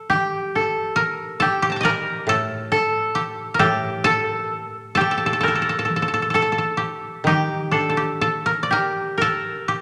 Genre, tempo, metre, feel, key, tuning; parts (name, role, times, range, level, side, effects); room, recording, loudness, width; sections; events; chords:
japanese traditional, Japanese chamber music; 61-70 BPM; 4/4; rubato; G hirajoshi; A4 = 440 Hz
koto; second line; 0.0-9.8 s; G4 to Bb4; -24 LUFS; equal
taiko ensemble; percussion; 0.1-7.5 s; -34 LUFS; equal
koto; melody; 1.0-9.8 s; D4 to Bb5; -24 LUFS; equal
koto; accompaniment; 2.3-9.8 s; A2 to Eb3; -32 LUFS; equal
wet recital hall reverb, RT60 1.6 s; -21 LUFS; mono
0.0-9.2 A section